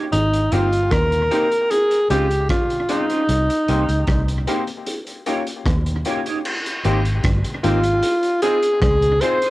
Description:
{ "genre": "lovers rock reggae", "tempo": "76 BPM", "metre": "4/4", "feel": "straight", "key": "Ab major", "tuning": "A4 = 440 Hz", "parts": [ { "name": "electric guitar through a small old amp", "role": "stabs", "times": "0.0-9.5 s", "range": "Db4 to Db5", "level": "-26 LUFS", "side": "right 7 dB", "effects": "ensemble chorus" }, { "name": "warm alto saxophone", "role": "melody", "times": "0.1-9.5 s", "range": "Eb4 to C5", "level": "-18 LUFS", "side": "equal", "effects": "cassette tape, analog delay" }, { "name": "vintage muted fingered electric bass", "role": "bass", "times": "0.1-9.2 s", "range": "G1 to Eb2", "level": "-20 LUFS", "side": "equal", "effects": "tube saturation" }, { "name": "crunchy breakbeat drum kit", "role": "drums", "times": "0.1-9.5 s", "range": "crash cymbal, hi-hat, kick drum, rim click", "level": "-25 LUFS", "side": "equal", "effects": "cassette tape, analog delay" }, { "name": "clear concert grand piano", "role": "accompaniment", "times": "0.5-9.4 s", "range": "Ab3 to Ab4", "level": "-27 LUFS", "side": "left 5 dB", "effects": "analog delay" } ], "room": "light reverb", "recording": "home recording on cassette", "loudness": "-17 LUFS", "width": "side -18 dB against mid", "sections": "0.0-6.4 A section; 6.4-9.5 B section", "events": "none", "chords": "0.1 Abmaj7; 1.7 Dbmaj7; 3.3 Cm7; 4.9 Eb7; 6.4 Abmaj7; 8.0 Dbmaj7" }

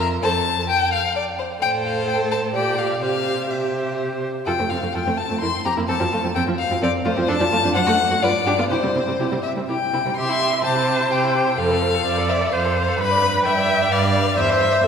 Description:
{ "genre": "quick classical-period movement for string quartet", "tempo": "128 BPM", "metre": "3/4", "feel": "rubato", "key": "F major, C major from 7.3 s", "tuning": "A4 = 440 Hz", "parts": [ { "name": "warm violin", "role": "melody", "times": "0.0-14.9 s", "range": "C5 to C6", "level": "-21 LUFS", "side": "left 5 dB", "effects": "none" }, { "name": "rich cello", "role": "bass", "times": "0.0-14.9 s", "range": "E2 to C3", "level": "-26 LUFS", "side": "right 3 dB", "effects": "none" }, { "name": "dark violin", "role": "second line", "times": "0.2-14.9 s", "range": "C4 to E5", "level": "-27 LUFS", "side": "left 1 dB", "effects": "none" }, { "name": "rich viola", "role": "accompaniment", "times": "0.2-14.9 s", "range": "F3 to E5", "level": "-23 LUFS", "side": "right 2 dB", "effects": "none" } ], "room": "wet church reverb, RT60 3.1 s", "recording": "recorded in a church or concert hall", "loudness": "-18 LUFS", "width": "side -7 dB against mid", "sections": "0.0-10.2 A section; 10.2-14.9 B section", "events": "none", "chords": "0.2 F; 1.6 Am; 2.5 Gm7/Bb; 3.0 C; 4.5 F; 5.4 C7(no3); 5.9 F; 7.3 Dm/F (rootless); 7.7 D/F# (rootless); 8.2 G; 8.7 C5; 10.2 C; 11.6 F; 13.0 G" }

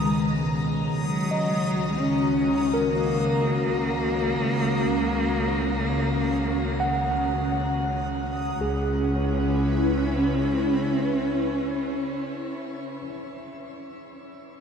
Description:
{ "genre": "ambient", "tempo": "free time", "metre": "none", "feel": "none", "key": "C# dorian", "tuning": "A4 = 440 Hz", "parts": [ { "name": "rich cello", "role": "melody", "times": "0.0-13.0 s", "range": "F#3 to C#4", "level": "-28 LUFS", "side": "equal", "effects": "ping-pong delay" }, { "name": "airy breathy pad", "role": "sustained chords", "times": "0.0-13.2 s", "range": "B2 to A#5", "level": "-28 LUFS", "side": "left 1 dB", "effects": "chorus, phaser" }, { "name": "bright tine electric piano", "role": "arpeggios", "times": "0.0-14.6 s", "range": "D#3 to F#5", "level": "-29 LUFS", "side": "equal", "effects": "fast stereo tremolo, ping-pong delay" }, { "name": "rich chamber cello section", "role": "bass", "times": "0.0-11.4 s", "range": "C#2", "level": "-30 LUFS", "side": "equal", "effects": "none" }, { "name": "backwards swelling texture", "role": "texture", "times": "0.0-8.6 s", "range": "D#6", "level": "-39 LUFS", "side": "equal", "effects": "built-in reverb" } ], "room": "wet shimmer reverb, RT60 8.6 s", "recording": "dark, warm production", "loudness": "-22 LUFS", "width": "side -7 dB against mid", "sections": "0.0-8.6 A section; 8.6-12.4 B section", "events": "none", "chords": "0.0 G#madd9/C#; 1.0 D#m7/C#; 8.6 C#m7" }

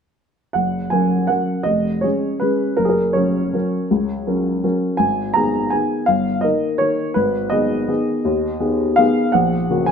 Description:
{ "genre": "classical, piano waltz", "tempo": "164 BPM", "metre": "3/4", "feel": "uneven beats, rubato", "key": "F# major", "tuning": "A4 = 436 Hz", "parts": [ { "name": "warm upright piano", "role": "solo", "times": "0.5-9.9 s", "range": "E#1 to A#5", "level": "-16 LUFS", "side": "equal", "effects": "none" } ], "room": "moderate recital hall reverb, RT60 1.5 s", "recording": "close, detailed microphones", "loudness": "-16 LUFS", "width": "side -6 dB against mid", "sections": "0.6-9.9 A section", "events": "none", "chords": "0.6 F#; 1.7 C#/E#; 2.8 F#; 5.0 G#m; 6.1 D#/G; 7.2 G#m; 9.3 F#/A#" }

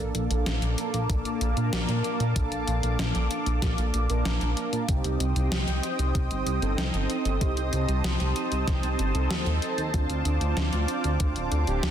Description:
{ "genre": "synthwave", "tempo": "95 BPM", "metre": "4/4", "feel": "straight", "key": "unclear", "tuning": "A4 = 440 Hz", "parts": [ { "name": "lush unison pad", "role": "sustained chords", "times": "0.1-11.9 s", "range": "Bb3 to Eb6", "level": "-32 LUFS", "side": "equal", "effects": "chorus, phaser, sidechain pumping" }, { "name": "mellow synth brass", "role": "stabs", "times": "0.0-11.9 s", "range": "Bb3 to Bb4", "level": "-32 LUFS", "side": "right 4 dB", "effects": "chorus, ping-pong delay" }, { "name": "chorused synth bass", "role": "bass", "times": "0.0-11.9 s", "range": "D1 to Bb2", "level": "-27 LUFS", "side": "equal", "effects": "none" }, { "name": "gated 80s digital drum machine", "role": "drums", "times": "0.1-11.9 s", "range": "hi-hat, snare drum", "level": "-32 LUFS", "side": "left 1 dB", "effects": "gated reverb, gated reverb snare, overdrive" }, { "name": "electronic kick drum", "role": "drums", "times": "1.1-11.3 s", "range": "none", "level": "-28 LUFS", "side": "equal", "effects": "overdrive" } ], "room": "light reverb", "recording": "dense, heavily limited modern master", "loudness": "-24 LUFS", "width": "side -10 dB against mid", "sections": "0.0-11.9 A section", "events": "none", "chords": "0.0 Bbmaj7; 4.9 Cm; 9.9 Dm7" }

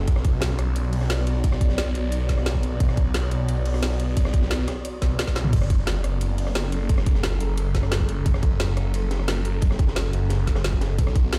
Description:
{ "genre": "dark technical drum and bass", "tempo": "176 BPM", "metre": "4/4", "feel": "straight", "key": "F# minor", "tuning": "A4 = 442 Hz", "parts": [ { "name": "swarming drone", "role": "sustained chords", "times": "0.0-11.4 s", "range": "F#3 to D5", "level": "-35 LUFS", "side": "equal", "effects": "built-in reverb, sidechain pumping" }, { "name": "phased detuned saw bass", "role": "bass", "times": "0.0-11.4 s", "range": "F#1 to B1", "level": "-26 LUFS", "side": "equal", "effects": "phaser, overdrive, sidechain pumping" }, { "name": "crunchy breakbeat drum kit", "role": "drums", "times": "0.1-11.4 s", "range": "hi-hat, ride cymbal, snare drum", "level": "-39 LUFS", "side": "equal", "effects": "high-pass filter on cymbals, high-pass filter on hats, high-pass filter on snare, high-pass filter on room" }, { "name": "drum and bass drum kit", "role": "drums", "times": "0.1-11.4 s", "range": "crash cymbal, hi-hat, rim click, snare drum, toms", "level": "-32 LUFS", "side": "equal", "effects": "none" }, { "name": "electronic kick drum", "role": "drums", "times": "0.1-11.2 s", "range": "none", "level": "-23 LUFS", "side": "equal", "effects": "none" } ], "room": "digital ambience", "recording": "played on a big sound system in a bare room, stone room reverb", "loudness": "-23 LUFS", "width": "mono", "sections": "0.0-11.4 A section", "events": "drum fill 5.3", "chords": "0.1 Bm; 5.5 F#m" }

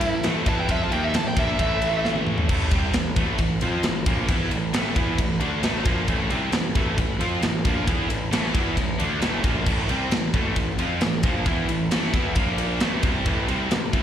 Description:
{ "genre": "heavy metal", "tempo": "134 BPM", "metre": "4/4", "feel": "straight", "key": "A phrygian", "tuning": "A4 = 439 Hz", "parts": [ { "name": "high-gain lead guitar", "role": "melody", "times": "0.0-2.0 s", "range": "E4 to A5", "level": "-26 LUFS", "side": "right 1 dB", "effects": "distortion, slapback echo, tape echo" }, { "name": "distorted electric guitar", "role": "riff", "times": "0.0-14.0 s", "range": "A2 to F4", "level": "-32 LUFS", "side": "equal", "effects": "none" }, { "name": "high-gain distorted guitar", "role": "riff", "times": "0.0-14.0 s", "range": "A2 to F4", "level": "-30 LUFS", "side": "left 12 dB", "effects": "distortion, slapback echo" }, { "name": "high-gain distorted guitar", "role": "riff", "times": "0.0-14.0 s", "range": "A2 to F4", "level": "-28 LUFS", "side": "right 11 dB", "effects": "distortion, slapback echo" }, { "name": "fuzz picked electric bass", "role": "bass", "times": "0.0-14.0 s", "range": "A1 to F2", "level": "-27 LUFS", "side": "equal", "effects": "overdrive" }, { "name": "tight metal drum kit", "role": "drums", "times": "0.0-14.0 s", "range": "crash cymbal, kick drum, ride cymbal, snare drum, toms", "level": "-24 LUFS", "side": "equal", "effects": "none" } ], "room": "light reverb", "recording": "live gig heard through the venue's PA, recital hall reverb", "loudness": "-20 LUFS", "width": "side -10 dB against mid", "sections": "0.0-2.5 A section; 2.5-14.0 B section", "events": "lead electric guitar solo 0.0-2.5; drum fill 2.0-2.5", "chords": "0.0 Am; 12.4 Bb5; 12.8 Am" }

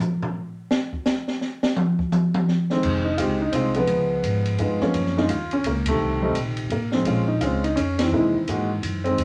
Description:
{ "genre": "jazz piano trio", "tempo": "170 BPM", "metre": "3/4", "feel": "swing 62% on 8ths", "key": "F minor", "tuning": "A4 = 440 Hz", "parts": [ { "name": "open jazz drum kit", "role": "drums", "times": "0.0-9.2 s", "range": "crash cymbal, hi-hat, kick drum, ride cymbal, snare drum, toms", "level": "-28 LUFS", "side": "equal", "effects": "none" }, { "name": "warm upright piano", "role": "melody", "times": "2.7-9.2 s", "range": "C3 to G4", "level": "-24 LUFS", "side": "equal", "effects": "none" }, { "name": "upright bass", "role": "bass", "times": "2.8-9.2 s", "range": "F1 to C3", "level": "-29 LUFS", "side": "equal", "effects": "none" } ], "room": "moderate studio reverb, RT60 0.6 s", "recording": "none", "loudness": "-23 LUFS", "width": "mono", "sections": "0.0-2.8 A section; 2.8-9.2 B section", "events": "upright piano solo 0.0-2.8; drum solo 0.0-2.8; band accent 5.8, 7.9", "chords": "0.0 N.C.; 2.8 Fm7; 3.9 Db7; 4.9 Gbmaj7; 6.0 F7 (rootless); 7.1 Bbm9; 8.1 C7alt" }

